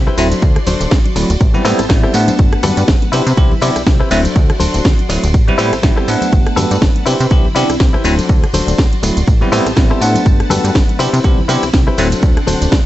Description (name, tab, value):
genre	filtered disco house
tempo	122 BPM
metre	4/4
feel	swing 57% on 16ths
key	unclear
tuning	A4 = 440 Hz
part	string machine, full ensemble	sustained chords	0.0-12.9 s	C4 to C6	-24 LUFS	right 1 dB	ensemble chorus, vintage 12-bit sampler grit, sidechain pumping
part	plucky analog bass	bass	0.0-12.8 s	D1 to C3	-17 LUFS	equal	tube saturation, sidechain pumping
part	direct-recorded clean electric guitar	riff	0.1-12.7 s	D4 to D5	-20 LUFS	left 4 dB	vintage 12-bit sampler grit, sidechain pumping
part	house drum kit	drums	0.1-12.8 s	hi-hat, ride cymbal, rim click, snare drum, tambourine	-21 LUFS	right 1 dB	sidechain pumping on perc, sidechain pumping on hats, sidechain pumping on cymbals
part	bell-like tine electric piano	accompaniment	0.2-12.1 s	F#3 to F#5	-18 LUFS	right 1 dB	phaser, sidechain pumping
part	tambourine and congas	percussion	0.2-12.8 s	none	-25 LUFS	left 2 dB	sidechain pumping on perc
part	electronic kick drum	drums	0.4-12.8 s	none	-12 LUFS	equal	none
room	digital ambience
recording	nothing above 8.0 kHz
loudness	-10 LUFS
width	side -14 dB against mid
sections	0.0-12.9 A section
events	none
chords	0.2 D7; 1.4 Am7; 2.4 Gmaj9; 3.1 Cmaj7; 4.1 D7; 5.3 Am7; 6.3 Gmaj9; 7.1 Cmaj7; 8.0 D7; 9.3 Am7; 10.3 Gmaj9; 11.0 Cmaj7; 12.0 D7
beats	| 0.42 0.92 1.41 1.90 | 2.39 2.88 3.37 3.87 | 4.36 4.85 5.34 5.83 | 6.33 6.82 7.31 7.80 | 8.29 8.78 9.28 9.77 | 10.26 10.75 11.24 11.73 | 12.23 12.72